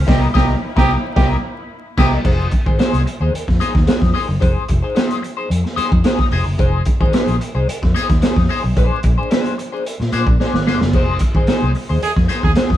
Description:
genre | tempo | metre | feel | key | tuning
funk | 110 BPM | 4/4 | straight | F dorian | A4 = 441 Hz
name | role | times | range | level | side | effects
muted studio string section | sustained chords | 0.0-2.2 s | Bb3 to E4 | -32 LUFS | equal | none
vintage muted fingered electric bass | bass | 0.0-12.8 s | F1 to Bb2 | -19 LUFS | equal | none
brilliant trombone | second line | 0.1-2.1, 12.0-12.5 s | G4 to Ab4 | -22 LUFS | right 4 dB | none
electric guitar at the edge of break-up | accompaniment | 0.1-12.8 s | D4 to D#5 | -22 LUFS | left 4 dB | wah
crunchy breakbeat drum kit | drums | 0.1-12.8 s | crash cymbal, hi-hat, kick drum, snare drum | -17 LUFS | equal | none
room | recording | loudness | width
light reverb | band playing live in one room, vinyl crackle | -14 LUFS | side -12 dB against mid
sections
0.0-2.2 A section; 2.2-12.8 B section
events
band accent 0.1-2.2; drum fill 10.4-10.9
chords
0.1 C7#9; 2.2 Fm7; 8.8 Bb9; 10.9 Fm7

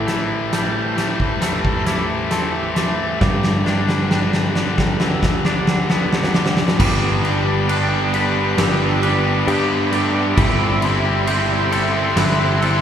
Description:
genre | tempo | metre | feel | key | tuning
post-rock | 67 BPM | 4/4 | straight | G major | A4 = 440 Hz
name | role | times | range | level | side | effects
warm chamber string section | sustained chords | 0.0-12.8 s | G4 to C6 | -30 LUFS | right 1 dB | none
glockenspiel with soft plastic mallets | arpeggios | 0.0-12.8 s | D6 to G6 | -29 LUFS | right 4 dB | none
twangy electric guitar | arpeggios | 0.0-12.8 s | G2 to B4 | -27 LUFS | left 1 dB | none
distorted electric guitar | riff | 0.0-12.8 s | G2 to G4 | -21 LUFS | left 3 dB | overdrive
picked electric bass | bass | 0.0-12.8 s | G1 to A2 | -23 LUFS | equal | none
huge arena drum kit | drums | 0.1-12.8 s | crash cymbal, hi-hat, kick drum, snare drum | -21 LUFS | equal | none
raw garage guitar | riff | 6.8-12.8 s | G3 to G4 | -22 LUFS | right 4 dB | overdrive
room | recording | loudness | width
wet church reverb, RT60 3.0 s | recorded in a church or concert hall | -16 LUFS | side -9 dB against mid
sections
0.0-6.8 A section; 6.8-12.8 B section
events
build-up 0.0-6.8; drum fill 0.0-6.8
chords
0.0 Am7; 3.2 Gmaj7; 6.8 Gadd9; 10.4 C6/G

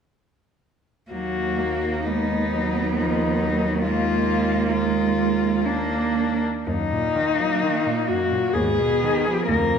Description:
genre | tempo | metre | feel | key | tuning
classical, lyrical piece for cello ensemble | 64 BPM | 3/4 | uneven beats, rubato | Eb minor | A4 = 439 Hz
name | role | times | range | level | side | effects
clear cello | melody | 1.1-9.8 s | D4 to Bb4 | -24 LUFS | left 5 dB | none
rich cello | second line | 1.1-9.8 s | Ab3 to Cb4 | -27 LUFS | right 8 dB | none
clear cello | accompaniment | 1.1-9.8 s | F2 to Bb3 | -26 LUFS | equal | none
clear cello | bass | 1.1-9.8 s | D2 to Eb2 | -26 LUFS | right 2 dB | none
room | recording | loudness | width
wet scoring stage reverb, RT60 1.9 s | minimal, uncompressed stereo recording | -20 LUFS | side -7 dB against mid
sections
1.1-6.7 A section; 6.7-9.8 B section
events
none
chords
1.1 Ebm; 3.8 Bb7/Eb; 6.7 Ebm; 8.6 Fm7b5/Eb

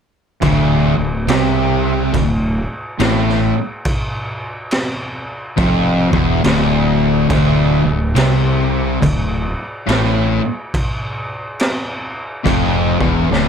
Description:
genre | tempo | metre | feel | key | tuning
stoner and doom metal | 70 BPM | 4/4 | swing 64% on 8ths | D minor | A4 = 442 Hz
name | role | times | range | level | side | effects
fuzz guitar | riff | 0.4-13.5 s | D2 to C3 | -18 LUFS | left 1 dB | distortion
thick fuzz guitar | riff | 0.4-13.5 s | D2 to C3 | -20 LUFS | left 9 dB | distortion
thick fuzz guitar | riff | 0.4-13.5 s | D2 to C3 | -20 LUFS | right 8 dB | distortion
fuzz fingered electric bass | bass | 0.4-13.5 s | D1 to C2 | -21 LUFS | equal | overdrive
raw garage drum kit | drums | 0.4-13.5 s | crash cymbal, kick drum, snare drum | -20 LUFS | equal | none
room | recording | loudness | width
light reverb, small room ambience | none | -14 LUFS | side -7 dB against mid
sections
0.4-13.5 A section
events
drum fill 13.3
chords
0.4 Dm

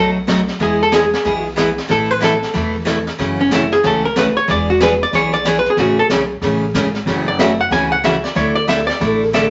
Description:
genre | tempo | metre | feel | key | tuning
country, western swing | 186 BPM | 4/4 | swing 63% on 8ths | A major | A4 = 440 Hz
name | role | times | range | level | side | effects
archtop guitar, miked and amplified | second line | 0.0-9.5 s | C#4 to G#5 | -18 LUFS | equal | none
picked steel-string acoustic guitar | accompaniment | 0.0-9.5 s | B2 to A4 | -20 LUFS | equal | none
upright bass | bass | 0.0-9.5 s | E1 to E2 | -27 LUFS | equal | none
jazz brush drum kit | drums | 0.3-9.5 s | brushed snare drum, hi-hat, snare drum | -26 LUFS | equal | none
room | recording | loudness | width
wet studio reverb, RT60 0.7 s | nothing above 7.7 kHz | -16 LUFS | mono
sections
0.0-9.5 A section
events
hollow-body jazz guitar solo 0.0-9.5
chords
0.0 B7; 0.6 E; 1.9 Asus2; 3.2 F#m7; 4.5 E7; 5.8 Amaj7; 7.1 F#m7; 8.4 Dsus2

